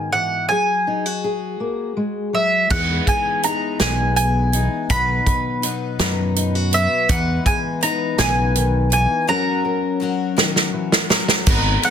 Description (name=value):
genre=indie folk with a building arrangement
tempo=55 BPM (dotted quarters)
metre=6/8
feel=straight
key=unclear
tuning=A4 = 439 Hz
part: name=mandolin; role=melody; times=0.0-11.9 s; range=E5 to B5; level=-20 LUFS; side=right 1 dB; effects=plate reverb
part: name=fingerpicked steel-string acoustic guitar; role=accompaniment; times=0.0-11.5 s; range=G#2 to B4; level=-25 LUFS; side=left 4 dB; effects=plate reverb
part: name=picked twelve-string acoustic guitar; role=accompaniment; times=2.7-11.9 s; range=G#2 to B4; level=-26 LUFS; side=left 7 dB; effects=plate reverb
part: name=fingered electric bass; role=bass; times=2.7-11.8 s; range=G#1 to F#2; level=-20 LUFS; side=equal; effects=none
part: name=natural country drum kit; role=drums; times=2.7-11.9 s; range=crash cymbal, hi-hat, kick drum, ride cymbal, snare drum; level=-19 LUFS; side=right 2 dB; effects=none
room=light reverb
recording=dense, heavily limited modern master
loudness=-17 LUFS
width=side -8 dB against mid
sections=0.0-2.7 A section; 2.7-11.5 B section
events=drum fill 10.4-11.5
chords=0.0 G#m7; 0.5 F#sus2; 2.7 Emaj7; 4.9 B; 7.1 Emaj7; 9.3 F#